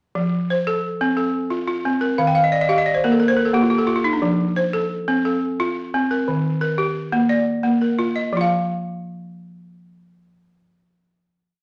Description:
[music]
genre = west african traditional, West African string and xylophone music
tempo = 117 BPM (dotted quarters)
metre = 12/8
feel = straight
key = F mixolydian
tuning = A4 = 440 Hz
[part]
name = balafon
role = solo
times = 0.2-11.6 s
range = Eb3 to G5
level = -20 LUFS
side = equal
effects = none
[sound]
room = wet large studio reverb, RT60 0.9 s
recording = tube saturation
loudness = -20 LUFS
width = mono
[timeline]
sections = 0.1-8.3 A section; 8.3-11.6 final note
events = balafon fill 2.2-4.2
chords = 0.1 F; 2.2 Eb; 3.2 Bb5; 4.2 F; 6.3 Eb; 7.3 Bb; 8.3 N.C.

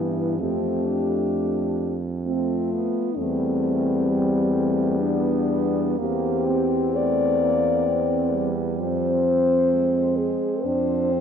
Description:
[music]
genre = classical, lyrical piece for horn quartet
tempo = 65 BPM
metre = 3/4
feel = rubato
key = C major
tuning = A4 = 440 Hz
[part]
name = mellow French horn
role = melody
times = 0.0-11.2 s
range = C4 to D5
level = -24 LUFS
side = left 6 dB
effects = none
[part]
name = mellow French horn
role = second line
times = 0.0-11.2 s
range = G3 to D4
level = -28 LUFS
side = right 8 dB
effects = none
[part]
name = mellow French horn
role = accompaniment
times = 0.0-11.2 s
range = E3 to D4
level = -27 LUFS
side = equal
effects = none
[part]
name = mellow French horn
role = bass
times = 0.0-11.2 s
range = E2 to G2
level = -27 LUFS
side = right 3 dB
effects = none
[sound]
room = moderate concert hall reverb, RT60 2.1 s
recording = dark, warm production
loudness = -20 LUFS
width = side -7 dB against mid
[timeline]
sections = 0.0-11.2 A section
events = none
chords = 0.4 F; 3.2 C/E; 8.8 Fm; 10.7 Dm7/F

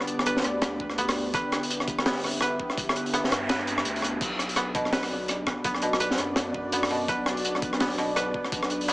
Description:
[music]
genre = half-time drum and bass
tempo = 167 BPM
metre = 4/4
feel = swing 58% on 16ths, half-time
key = B minor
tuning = A4 = 440 Hz
[part]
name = dark analog pad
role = sustained chords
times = 0.0-8.9 s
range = B3 to E5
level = -31 LUFS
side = equal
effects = chorus, sidechain pumping
[part]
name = koto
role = arpeggios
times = 0.0-8.9 s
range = B2 to B4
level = -30 LUFS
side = equal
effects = dub echo
[part]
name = saturated sub bass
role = bass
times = 0.0-8.9 s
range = G1 to G2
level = -38 LUFS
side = equal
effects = none
[part]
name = crunchy breakbeat drum kit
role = drums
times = 0.0-8.9 s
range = crash cymbal, hi-hat, rim click, snare drum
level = -28 LUFS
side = equal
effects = none
[part]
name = electronic kick drum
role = drums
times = 0.8-8.6 s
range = none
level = -35 LUFS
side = equal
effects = overdrive
[part]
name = noise sweep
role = sound effects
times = 3.0-4.2 s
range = none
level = -36 LUFS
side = right 1 dB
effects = none
[sound]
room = light reverb, small room ambience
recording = small speaker sound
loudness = -24 LUFS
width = side -20 dB against mid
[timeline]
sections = 0.0-8.9 A section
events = noise sweep 3.0-4.2; kick drops out 3.5-4.2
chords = 0.0 G; 4.2 Bm

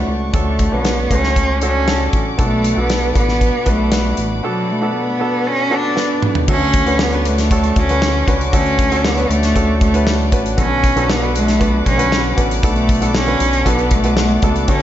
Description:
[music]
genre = piano-driven pop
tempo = 117 BPM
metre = 4/4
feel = straight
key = D major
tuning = A4 = 436 Hz
[part]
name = rich cello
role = melody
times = 0.0-14.8 s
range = F#3 to D4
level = -18 LUFS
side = right 1 dB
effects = none
[part]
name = clear baby grand piano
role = accompaniment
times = 0.0-14.8 s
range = B2 to B4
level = -20 LUFS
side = equal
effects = slapback echo
[part]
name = warm chamber string section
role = sustained chords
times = 0.0-14.8 s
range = A4 to D6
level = -29 LUFS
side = left 1 dB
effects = none
[part]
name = chorused synth bass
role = bass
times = 0.0-14.8 s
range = A1 to D2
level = -20 LUFS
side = equal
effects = none
[part]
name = modern studio drum kit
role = drums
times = 0.3-14.8 s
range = crash cymbal, hi-hat, kick drum, snare drum, toms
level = -18 LUFS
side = equal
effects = none
[sound]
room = moderate recital hall reverb, RT60 1.5 s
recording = big arena sound, nothing above 7.8 kHz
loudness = -13 LUFS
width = side -12 dB against mid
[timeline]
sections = 0.0-6.5 A section; 6.5-14.8 B section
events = drum fill 6.0-6.5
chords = 0.0 Dmaj7; 2.4 Bm7; 6.5 Dmaj7

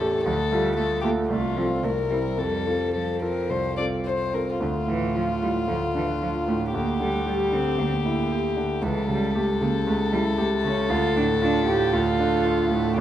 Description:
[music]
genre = quick classical-period movement for piano trio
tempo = 115 BPM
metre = 4/4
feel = rubato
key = F major, D minor from 4.6 s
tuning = A4 = 440 Hz
[part]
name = rich violin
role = melody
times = 0.0-13.0 s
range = F4 to D5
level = -27 LUFS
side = left 5 dB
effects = none
[part]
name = clear concert grand piano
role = accompaniment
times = 0.0-13.0 s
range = C2 to Bb4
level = -24 LUFS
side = right 1 dB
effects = none
[part]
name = rich cello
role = second line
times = 0.3-13.0 s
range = D3 to G4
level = -28 LUFS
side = right 4 dB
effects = none
[sound]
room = wet scoring stage reverb, RT60 1.7 s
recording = worn, warbling old tape, cassette tape, warbly pitch drift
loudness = -22 LUFS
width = side -11 dB against mid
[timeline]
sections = 0.0-4.6 A section; 4.6-13.0 B section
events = none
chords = 0.3 Dm; 1.3 F/C; 1.8 C7; 2.4 F; 4.6 Dm; 6.7 Em7b5/D; 8.8 A7/C#; 10.9 Dm

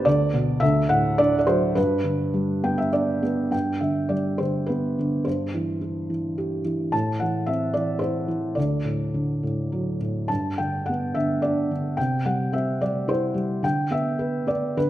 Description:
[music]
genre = classical, lyrical solo piano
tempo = 98-111 BPM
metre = 3/4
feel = rubato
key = G major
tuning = A4 = 438 Hz
[part]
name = felt-muted upright piano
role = solo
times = 0.0-14.9 s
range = D2 to A5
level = -22 LUFS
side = equal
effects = none
[sound]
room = moderate recital hall reverb, RT60 1.4 s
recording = none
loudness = -22 LUFS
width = side -13 dB against mid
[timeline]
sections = 0.0-3.5 A section; 3.5-14.9 B section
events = felt piano fill 2.3-3.5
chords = 0.1 Bm/D; 0.6 D; 1.8 G; 5.3 C/G; 6.9 Am; 8.6 D; 10.3 G; 12.0 C; 13.6 G6/D

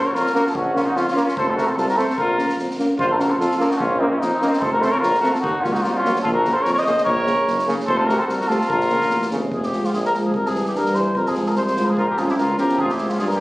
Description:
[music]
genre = balkan folk, Balkan brass band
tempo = 147 BPM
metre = 2/4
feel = swing 55% on 16ths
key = Bb harmonic minor, F harmonic minor from 9.5 s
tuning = A4 = 441 Hz
[part]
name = cornet with cup mute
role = melody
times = 0.0-13.4 s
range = Eb4 to Eb5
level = -21 LUFS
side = left 1 dB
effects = none
[part]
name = warm trumpet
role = second line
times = 0.0-9.3, 12.0-13.4 s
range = Bb3 to C5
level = -25 LUFS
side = equal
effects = none
[part]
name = warm tuba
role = bass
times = 0.1-13.4 s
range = F1 to G2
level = -25 LUFS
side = equal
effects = none
[part]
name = street-band drum kit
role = percussion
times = 0.2-13.3 s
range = kick drum, snare drum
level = -34 LUFS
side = equal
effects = none
[part]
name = bright trombone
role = accompaniment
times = 0.3-13.2 s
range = C3 to Bb3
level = -26 LUFS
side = right 1 dB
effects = none
[part]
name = dark euphonium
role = accompaniment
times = 0.3-13.2 s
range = G3 to Db4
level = -25 LUFS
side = equal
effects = none
[sound]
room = moderate recital hall reverb, RT60 1.5 s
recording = recorded on a phone in the room, club reverb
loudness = -17 LUFS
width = side -19 dB against mid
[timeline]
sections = 0.0-3.0 A section; 3.0-9.5 A section; 9.5-13.4 B section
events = none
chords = 0.0 Bbm; 1.4 F; 2.2 Bbm; 4.6 F; 5.4 Ebm; 6.3 Bbm; 7.9 F; 8.7 Bbm; 9.5 Fm; 10.3 C; 11.2 Fm; 12.0 Bbm; 12.8 Fm

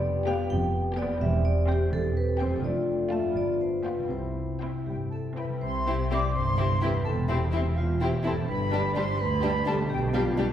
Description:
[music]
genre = cinematic, playful, whimsical film cue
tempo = 84 BPM (dotted quarters)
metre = 6/8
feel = straight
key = C major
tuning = A4 = 440 Hz
[part]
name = vibraphone with medium hard mallets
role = melody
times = 0.0-10.4 s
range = E4 to G5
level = -33 LUFS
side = right 2 dB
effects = none
[part]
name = mellow French horn section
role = sustained chords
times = 0.0-5.4 s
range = A3 to G4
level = -31 LUFS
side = left 3 dB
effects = none
[part]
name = concert harp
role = arpeggios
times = 0.0-10.5 s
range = E2 to G4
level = -34 LUFS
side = left 5 dB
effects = none
[part]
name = dark chamber double bass section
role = bass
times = 0.0-10.5 s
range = E1 to D2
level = -30 LUFS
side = right 1 dB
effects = none
[part]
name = warm chamber cello section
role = bass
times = 0.0-10.5 s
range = D2 to C3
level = -33 LUFS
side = right 3 dB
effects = none
[part]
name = rich chamber violin section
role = melody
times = 0.3-10.5 s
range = G4 to A5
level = -37 LUFS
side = left 4 dB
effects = none
[part]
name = warm chamber violin section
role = second line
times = 0.3-10.5 s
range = D4 to G4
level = -36 LUFS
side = left 3 dB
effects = none
[part]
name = rich chamber viola section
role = accompaniment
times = 0.3-10.5 s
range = G3 to C4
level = -37 LUFS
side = right 1 dB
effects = none
[part]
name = small flute group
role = second line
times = 4.6-10.2 s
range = E5 to D6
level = -32 LUFS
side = equal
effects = none
[sound]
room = wet scoring stage reverb, RT60 1.9 s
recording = heard from further back in the room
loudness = -24 LUFS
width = side -10 dB against mid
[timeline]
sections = 0.0-5.6 A section; 5.6-10.5 A section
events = none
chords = 0.0 G7/F; 1.2 C/E; 2.6 Dm/F; 3.4 G7; 4.1 C; 7.1 C/E; 8.5 G; 9.9 G/B

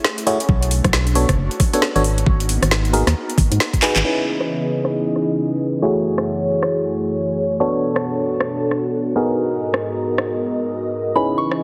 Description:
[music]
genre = UK garage, two-step garage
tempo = 135 BPM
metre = 4/4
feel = swing 61% on 16ths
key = unclear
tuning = A4 = 440 Hz
[part]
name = airy breathy pad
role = sustained chords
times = 0.0-11.6 s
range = F#2 to D#5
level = -27 LUFS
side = equal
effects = chorus, sidechain pumping
[part]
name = garage drum kit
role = drums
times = 0.0-11.6 s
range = handclaps, hi-hat, rim click, snare drum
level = -24 LUFS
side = equal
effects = overdrive, low-pass filter on snare, low-pass filter on hats
[part]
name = FM electric piano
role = stabs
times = 0.3-11.6 s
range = A3 to C#5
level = -23 LUFS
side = equal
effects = chorus, phaser, low-pass filter, dub echo
[part]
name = organ-like FM bass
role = bass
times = 0.5-4.0 s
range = F#1 to G#2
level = -20 LUFS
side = equal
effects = none
[part]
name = electronic kick drum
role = drums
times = 0.5-3.8 s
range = none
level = -20 LUFS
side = equal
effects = overdrive
[part]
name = soft synth bell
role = melody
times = 11.2-11.6 s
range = B5 to C#6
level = -24 LUFS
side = equal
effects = chorus, phaser
[sound]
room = moderate lush hall reverb, RT60 1.8 s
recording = heavily compressed radio sound, multiband compression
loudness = -19 LUFS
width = mono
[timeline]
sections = 0.0-4.0 A section; 4.0-11.6 B section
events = drum fill 3.8; band accent 3.9; filter sweep on drum 4.0-11.6; filter sweep on analog synth pad 4.0-11.6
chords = 0.5 Bm9; 2.0 G#m9; 4.0 C#m9; 5.8 F#m9; 7.6 Bm9; 9.2 G#m9

